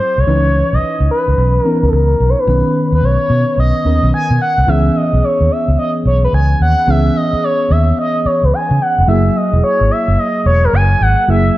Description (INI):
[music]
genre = R&B, new jack swing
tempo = 109 BPM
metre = 4/4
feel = swing 65% on 16ths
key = unclear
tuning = A4 = 442 Hz
[part]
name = expressive synth lead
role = melody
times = 0.0-11.6 s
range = A4 to G#5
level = -15 LUFS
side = equal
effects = chorus
[part]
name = mellow FM electric piano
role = accompaniment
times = 0.0-11.6 s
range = D#3 to B4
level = -18 LUFS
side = left 1 dB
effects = chorus
[part]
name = vintage muted fingered electric bass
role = bass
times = 0.2-11.5 s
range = E1 to C#3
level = -13 LUFS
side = equal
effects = none
[sound]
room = moderate echo chamber reverb, RT60 1.4 s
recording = dark, warm production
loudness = -11 LUFS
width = side -16 dB against mid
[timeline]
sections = 0.0-4.7 A section; 4.7-11.6 B section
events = none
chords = 0.3 C#m9; 2.5 Bmaj9; 4.7 C#m7; 9.1 F#9